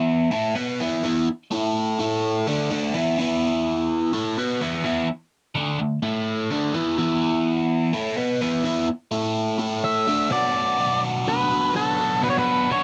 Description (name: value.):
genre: rock.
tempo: 126 BPM.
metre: 4/4.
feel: straight.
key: B minor.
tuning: A4 = 440 Hz.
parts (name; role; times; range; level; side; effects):
biting overdriven guitar; riff; 0.0-12.8 s; B2 to B4; -24 LUFS; equal; phaser.
octave-fuzz lead guitar; melody; 9.8-12.8 s; A4 to E5; -24 LUFS; equal; distortion.
room: light reverb.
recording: dry, close 1970s-style studio recording.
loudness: -23 LUFS.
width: mono.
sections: 0.0-10.3 A section; 10.3-12.8 B section.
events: none.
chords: 0.3 Esus24; 1.5 A5; 2.5 D5; 3.2 E5; 4.1 D5; 6.0 A5; 6.5 D5; 7.0 E5; 7.9 Esus24; 9.1 A5; 10.1 D5; 10.3 Bm.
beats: 0.32 | 0.80 1.28 1.75 2.23 | 2.71 3.18 3.66 4.13 | 4.61 5.08 5.56 6.04 | 6.51 6.99 7.46 7.94 | 8.41 8.89 9.37 9.85 | 10.32 10.80 11.28 11.76 | 12.23 12.71.